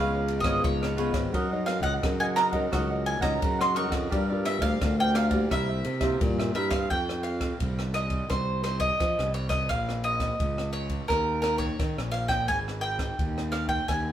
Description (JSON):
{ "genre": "samba and choro", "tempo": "86 BPM", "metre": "4/4", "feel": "straight", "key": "F minor", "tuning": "A4 = 439 Hz", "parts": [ { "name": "bowl-back mandolin", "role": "melody", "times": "0.0-14.1 s", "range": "Bb4 to Db6", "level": "-28 LUFS", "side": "right 1 dB", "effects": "none" }, { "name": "cavaquinho", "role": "accompaniment", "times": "0.0-6.9 s", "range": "E4 to Gb5", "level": "-34 LUFS", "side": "right 2 dB", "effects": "none" }, { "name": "nylon-string guitar", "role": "accompaniment", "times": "0.0-6.9 s", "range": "G2 to Bb4", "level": "-31 LUFS", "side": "left 2 dB", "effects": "none" }, { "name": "fuzz fingered electric bass", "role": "bass", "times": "0.0-14.1 s", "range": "Ab1 to F3", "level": "-30 LUFS", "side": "equal", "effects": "overdrive" }, { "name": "open jazz drum kit", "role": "drums", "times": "0.3-14.0 s", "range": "kick drum, ride cymbal, rim click", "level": "-32 LUFS", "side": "equal", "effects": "none" } ], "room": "moderate studio reverb, RT60 0.7 s", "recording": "band playing live in one room", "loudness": "-24 LUFS", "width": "side -10 dB against mid", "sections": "0.0-6.9 A section; 6.9-14.1 B section", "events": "none", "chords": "0.0 Db7; 1.3 Gb6; 4.1 Gm7; 5.5 C7; 6.9 F5; 9.7 Bbm; 11.1 Eb5; 12.5 Ab5" }